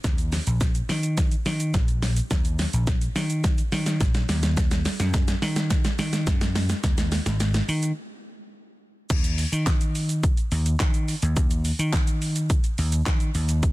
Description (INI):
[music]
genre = dance-pop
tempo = 106 BPM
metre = 4/4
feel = straight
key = Eb minor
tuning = A4 = 440 Hz
[part]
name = vintage slap bass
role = bass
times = 0.0-13.7 s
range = Ab1 to Eb3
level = -24 LUFS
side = equal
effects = sidechain pumping
[part]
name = pop drum kit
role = drums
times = 0.0-13.7 s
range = crash cymbal, handclaps, hi-hat, kick drum, shaker, snare drum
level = -24 LUFS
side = equal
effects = none
[sound]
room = little or no reverb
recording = dense, heavily limited modern master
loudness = -21 LUFS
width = side -18 dB against mid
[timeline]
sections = 0.0-9.1 A section; 9.1-13.7 B section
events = build-up 0.0-9.1; drum fill 0.0-8.0; break 8.0-9.1; drop 9.1-13.7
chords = none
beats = | 0.04 0.61 1.18 1.74 | 2.31 2.88 3.44 4.01 | 4.57 5.14 5.71 6.27 | 6.84 7.40 7.97 8.54 | 9.10 9.67 10.23 10.80 | 11.37 11.93 12.50 13.06 | 13.63